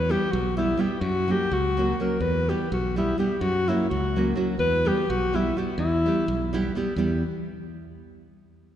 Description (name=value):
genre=balkan folk, Balkan wedding band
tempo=252 BPM (eighths)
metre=5/8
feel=straight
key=E dorian sharp4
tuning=A4 = 441 Hz
part: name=mellow alto saxophone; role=melody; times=0.0-6.5 s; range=E4 to B4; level=-26 LUFS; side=left 2 dB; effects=none
part: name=modern bright fingered electric bass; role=bass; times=0.0-7.2 s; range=B1 to F#2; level=-28 LUFS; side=equal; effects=none
part: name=nylon-string guitar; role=accompaniment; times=0.1-7.2 s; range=F#3 to G4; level=-28 LUFS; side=right 2 dB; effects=none
room=wet church reverb, RT60 2.9 s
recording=recorded in a church or concert hall, nothing above 10.5 kHz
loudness=-22 LUFS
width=side -10 dB against mid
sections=0.0-7.0 A section; 7.0-8.1 B section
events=none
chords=0.0 Em; 1.0 F#; 2.2 Em; 3.4 F#; 4.6 Em